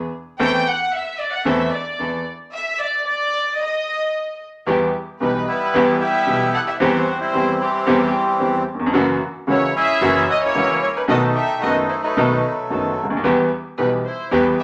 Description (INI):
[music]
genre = tango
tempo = 112 BPM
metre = 4/4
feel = rubato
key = E harmonic minor from 4.7 s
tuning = A4 = 440 Hz
[part]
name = bright upright piano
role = accompaniment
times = 0.0-14.5 s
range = F#1 to A4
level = -22 LUFS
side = equal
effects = none
[part]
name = muted studio string section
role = stabs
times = 0.0-14.5 s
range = A#3 to A4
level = -31 LUFS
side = equal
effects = none
[part]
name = upright bass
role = bass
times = 0.0-14.5 s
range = F#1 to E2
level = -34 LUFS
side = equal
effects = none
[part]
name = warm studio violin section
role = second line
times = 0.4-14.6 s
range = G4 to G5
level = -25 LUFS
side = equal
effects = none
[part]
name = bandoneon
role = melody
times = 5.2-14.6 s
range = E3 to A4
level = -23 LUFS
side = equal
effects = none
[sound]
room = wet studio reverb, RT60 0.8 s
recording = none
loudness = -19 LUFS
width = mono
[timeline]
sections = 0.0-4.7 A section; 4.7-14.6 B section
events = violin section solo 0.0-4.7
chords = 0.4 Am/E; 2.5 N.C.; 4.7 Em; 6.8 C/E; 8.9 F#7; 11.1 B7; 13.2 Em